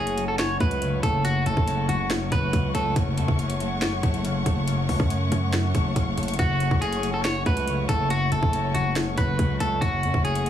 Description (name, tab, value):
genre	hip hop, trap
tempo	140 BPM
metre	4/4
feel	half-time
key	F# minor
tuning	A4 = 440 Hz
part	electric guitar at the edge of break-up	melody	0.0-2.9, 6.4-10.5 s	F#4 to C#5	-27 LUFS	right 1 dB	digital delay
part	concert harp	accompaniment	0.0-10.5 s	F#2 to C#4	-27 LUFS	left 2 dB	none
part	warm symphonic string section	sustained chords	0.0-10.5 s	A3 to C#6	-32 LUFS	left 2 dB	none
part	distorted 808-style bass	bass	0.0-10.5 s	F#1 to F#2	-29 LUFS	right 1 dB	distortion
part	trap drum kit	drums	0.1-10.5 s	hi-hat, kick drum, snare drum	-26 LUFS	equal	none
room	digital ambience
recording	heavily compressed radio sound, small room ambience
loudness	-21 LUFS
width	side -10 dB against mid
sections	0.0-10.5 A section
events	none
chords	0.0 F#m